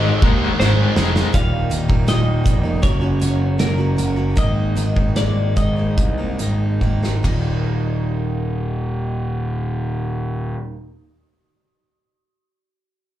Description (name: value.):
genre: quiet-loud alternative rock.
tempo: 68-81 BPM.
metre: 4/4.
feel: straight.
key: unclear.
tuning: A4 = 440 Hz.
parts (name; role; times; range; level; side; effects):
twelve-string electric guitar; melody; 0.0-6.8 s; Bb4 to F5; -27 LUFS; equal; plate reverb, slapback echo, tape echo.
biting overdriven guitar; riff; 0.0-1.3 s; Ab2 to Ab3; -26 LUFS; right 1 dB; slapback echo.
crunchy overdriven guitar; riff; 0.0-1.3 s; Ab2 to Ab3; -22 LUFS; left 11 dB; tremolo, slapback echo.
high-gain distorted guitar; riff; 0.0-1.3 s; Ab2 to Ab3; -26 LUFS; right 10 dB; distortion, slapback echo.
fuzz picked electric bass; bass; 0.0-10.5 s; Eb1 to Eb2; -20 LUFS; equal; overdrive.
loose indie drum kit; drums; 0.2-7.4 s; hi-hat, kick drum, ride cymbal, snare drum; -20 LUFS; equal; none.
picked steel-string acoustic guitar; arpeggios; 1.3-10.8 s; Eb2 to Gb4; -25 LUFS; right 2 dB; plate reverb, slapback echo.
room: light reverb.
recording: live gig heard through the venue's PA, club reverb.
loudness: -17 LUFS.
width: side -12 dB against mid.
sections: 0.0-1.3 A section; 1.3-7.7 B section; 7.7-11.2 C section.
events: drum fill 0.6-1.3, 6.8-7.7; slowing down 1.3-7.7.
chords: 0.0 Ab; 1.3 Eb; 2.8 Gb; 4.4 Abadd9; 7.2 Eb.